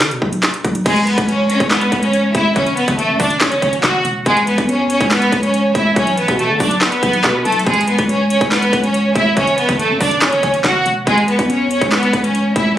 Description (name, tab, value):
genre	hip hop, trap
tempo	141 BPM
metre	4/4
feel	half-time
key	C# phrygian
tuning	A4 = 440 Hz
part	growling 808-style bass	bass	0.0-12.8 s	E1 to D3	-19 LUFS	equal	none
part	trap drum kit	drums	0.0-12.7 s	crash cymbal, handclaps, hi-hat, kick drum, snare drum	-18 LUFS	equal	none
part	rich studio violin section	melody	0.9-12.7 s	G#3 to F#5	-15 LUFS	equal	tape echo
room	light reverb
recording	recorded on a phone in the room, club reverb, vinyl crackle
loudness	-13 LUFS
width	side -12 dB against mid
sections	0.9-12.8 A section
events	break 0.0-0.9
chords	0.0 Bm; 0.9 C#m; 2.6 F#m; 4.3 C#m; 6.0 Bm7; 7.7 C#m; 9.4 F#m; 11.1 C#m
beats	0.01 0.43 | 0.86 1.28 1.71 2.13 | 2.56 2.98 3.41 3.84 | 4.26 4.69 5.11 5.54 | 5.96 6.39 6.81 7.24 | 7.67 8.09 8.52 8.94 | 9.37 9.79 10.22 10.64 | 11.07 11.49 11.92 12.35